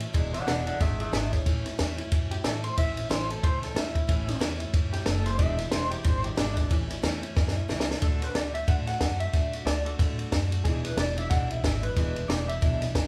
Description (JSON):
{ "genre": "rockabilly", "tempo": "183 BPM", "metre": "4/4", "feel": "swing 59% on 8ths", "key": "A major", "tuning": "A4 = 438 Hz", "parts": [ { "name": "picked steel-string acoustic guitar", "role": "accompaniment", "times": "0.0-13.1 s", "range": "E2 to F#4", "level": "-38 LUFS", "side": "equal", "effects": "none" }, { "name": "upright bass", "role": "bass", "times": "0.0-13.1 s", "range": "E1 to A2", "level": "-34 LUFS", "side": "equal", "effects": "none" }, { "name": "compact cocktail drum kit", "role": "drums", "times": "0.0-13.0 s", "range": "kick drum, ride cymbal, snare drum", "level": "-30 LUFS", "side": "equal", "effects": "none" }, { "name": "electric guitar through a small old amp", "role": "melody", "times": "0.3-12.9 s", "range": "D4 to F#5", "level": "-36 LUFS", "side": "equal", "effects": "tremolo" } ], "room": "light reverb", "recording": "band playing live in one room", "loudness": "-27 LUFS", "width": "mono", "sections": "0.0-8.0 A section; 8.0-13.1 B section", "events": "clean electric guitar solo 0.0-8.0; drum fill 7.4-8.0", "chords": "0.1 E7; 1.5 A; 5.4 E7; 6.7 A; 8.0 D; 10.7 E7", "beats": "| 0.14 0.47 0.80 1.13 | 1.46 1.79 2.12 2.44 | 2.77 3.10 3.43 3.76 | 4.08 4.41 4.74 5.07 | 5.40 5.72 6.05 6.38 | 6.71 7.04 7.37 7.69 | 8.02 8.35 8.68 9.01 | 9.34 9.66 9.99 10.32 | 10.65 10.98 11.31 11.64 | 11.96 12.29 12.62 12.95" }